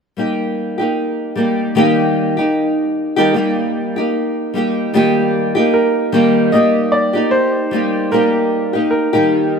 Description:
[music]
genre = pop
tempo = 76 BPM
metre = 4/4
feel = swing 55% on 16ths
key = Eb major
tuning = A4 = 439 Hz
[part]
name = nylon-string guitar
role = accompaniment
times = 0.2-9.6 s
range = Eb3 to G4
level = -14 LUFS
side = equal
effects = double-tracked left and right
[part]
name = clear upright piano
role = melody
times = 5.7-9.6 s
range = Bb4 to Eb5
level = -17 LUFS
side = right 2 dB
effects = none
[sound]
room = moderate lush hall reverb, RT60 2.6 s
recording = rough home demo mix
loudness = -13 LUFS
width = side -6 dB against mid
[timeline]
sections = 0.2-6.5 A section; 6.5-9.6 B section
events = none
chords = 0.2 Eb

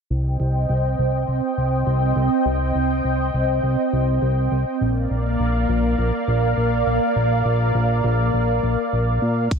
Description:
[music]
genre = synthwave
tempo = 102 BPM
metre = 4/4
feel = straight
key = C minor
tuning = A4 = 440 Hz
[part]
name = lush unison pad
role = sustained chords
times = 0.1-9.6 s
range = Bb3 to G5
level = -21 LUFS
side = right 1 dB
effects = chorus, phaser, sidechain pumping
[part]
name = fat analog bass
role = bass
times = 0.1-9.6 s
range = Bb1 to Bb2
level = -21 LUFS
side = equal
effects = sidechain pumping
[part]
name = electronic hi-hat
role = drums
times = 9.5-9.6 s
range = none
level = -32 LUFS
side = right 1 dB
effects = none
[part]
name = electronic kick drum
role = drums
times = 9.5-9.6 s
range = none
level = -19 LUFS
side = equal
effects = none
[sound]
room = moderate lush hall reverb, RT60 1.6 s, digital ambience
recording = big arena sound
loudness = -18 LUFS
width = side -6 dB against mid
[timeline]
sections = 0.1-9.6 A section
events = none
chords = 0.1 Cm; 4.8 Bb

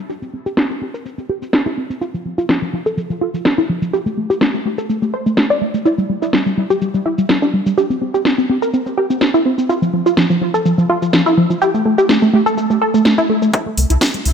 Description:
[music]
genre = progressive house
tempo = 125 BPM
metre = 4/4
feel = straight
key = C mixolydian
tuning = A4 = 440 Hz
[part]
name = tight sequenced synth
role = arpeggios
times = 0.0-14.3 s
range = F3 to D5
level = -15 LUFS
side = equal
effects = chorus, sidechain pumping, dub echo
[part]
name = house drum kit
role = drums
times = 0.1-14.3 s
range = hi-hat, shaker, snare drum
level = -18 LUFS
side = equal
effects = overdrive, low-pass filter on hats, low-pass filter on snare, low-pass filter on perc, low-pass filter on room
[part]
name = electronic kick drum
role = drums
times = 13.5-14.1 s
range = none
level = -21 LUFS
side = equal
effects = overdrive, high-pass filter on kick, high-pass filter on room
[part]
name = round analog bass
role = bass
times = 13.8-14.3 s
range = C2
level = -14 LUFS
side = equal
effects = sidechain pumping
[sound]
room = moderate lush hall reverb, RT60 1.7 s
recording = none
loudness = -14 LUFS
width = side -7 dB against mid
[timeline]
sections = 0.0-13.5 A section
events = filter sweep on synth arpeggio sound 0.0-13.5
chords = 0.0 C5; 2.0 N.C.; 5.9 C5; 9.7 N.C.; 13.5 C5

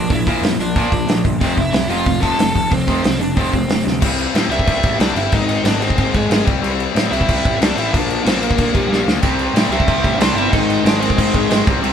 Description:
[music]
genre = punk rock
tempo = 184 BPM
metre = 4/4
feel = straight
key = unclear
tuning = A4 = 443 Hz
[part]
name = crunchy overdriven guitar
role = melody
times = 0.0-11.7 s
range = G3 to A5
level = -21 LUFS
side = right 1 dB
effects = none
[part]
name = distorted electric guitar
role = riff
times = 0.0-11.9 s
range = F2 to C4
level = -21 LUFS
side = left 6 dB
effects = overdrive
[part]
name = overdriven semi-hollow guitar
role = riff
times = 0.0-4.0, 9.2-11.9 s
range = F2 to C4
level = -21 LUFS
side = right 4 dB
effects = none
[part]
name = fuzz picked electric bass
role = bass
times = 0.0-11.9 s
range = F1 to A2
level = -23 LUFS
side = equal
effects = overdrive
[part]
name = loose indie drum kit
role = drums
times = 0.1-11.9 s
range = crash cymbal, hi-hat, kick drum, snare drum, splash cymbal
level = -18 LUFS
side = equal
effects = none
[sound]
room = moderate stone room reverb, RT60 1.1 s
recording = band playing live in one room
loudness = -14 LUFS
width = side -8 dB against mid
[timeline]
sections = 0.0-4.0 A section; 4.0-11.9 B section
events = drum fill 3.9, 8.9-9.2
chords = 0.0 Bb; 1.4 F; 4.0 C; 5.3 Ab; 6.5 C; 7.9 Bb; 9.2 C; 10.5 Ab

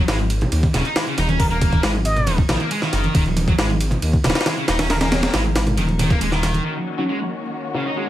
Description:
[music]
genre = breakbeat, breaks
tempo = 137 BPM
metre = 4/4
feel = straight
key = Eb minor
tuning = A4 = 440 Hz
[part]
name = thick fuzz guitar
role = riff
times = 0.0-8.0 s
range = Db3 to Eb4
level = -24 LUFS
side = equal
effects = distortion, low-pass filter, dub echo
[part]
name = dark detuned saw bass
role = bass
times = 0.0-6.6 s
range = Eb1 to Eb2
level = -21 LUFS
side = equal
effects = tube saturation
[part]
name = breakbeat sampler-style drum kit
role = drums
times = 0.1-8.1 s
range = hi-hat, kick drum, ride cymbal, snare drum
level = -21 LUFS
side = equal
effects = low-pass filter on cymbals, studio reverb, low-pass filter on kick, low-pass filter on snare, low-pass filter on hats
[part]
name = electronic hi-hat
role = drums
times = 0.1-6.6 s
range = none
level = -36 LUFS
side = right 1 dB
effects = none
[part]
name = congas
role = percussion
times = 0.1-6.6 s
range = none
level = -26 LUFS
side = right 2 dB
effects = none
[part]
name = trumpet with plunger mute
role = melody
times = 1.4-5.1 s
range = Bb4 to Eb5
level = -29 LUFS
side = equal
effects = old record sound, vintage 12-bit sampler grit, dub echo
[part]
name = muted studio string section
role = sustained chords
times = 6.7-8.1 s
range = Eb3 to Gb4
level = -27 LUFS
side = left 2 dB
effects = sidechain pumping
[part]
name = orchestra-hit-like synth stab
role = stabs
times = 7.0-8.0 s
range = Db4 to Gb4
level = -27 LUFS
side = right 1 dB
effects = built-in reverb
[sound]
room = light reverb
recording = vinyl crackle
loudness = -17 LUFS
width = side -13 dB against mid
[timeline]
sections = 0.0-6.7 A section; 6.7-8.1 B section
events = none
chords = 0.0 Eb5; 6.7 Ebm7

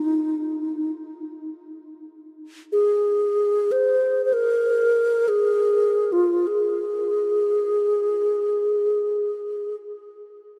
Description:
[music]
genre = world meditative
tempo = free time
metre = none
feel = none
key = Ab major pentatonic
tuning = A4 = 439 Hz
[part]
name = hollow alto flute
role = solo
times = 0.0-9.8 s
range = Eb4 to C5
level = -23 LUFS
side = equal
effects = diffuse ambient delay
[sound]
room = wet huge ambient reverb, RT60 6.6 s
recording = none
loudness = -22 LUFS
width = mono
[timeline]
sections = 0.0-10.6 A section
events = none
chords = none

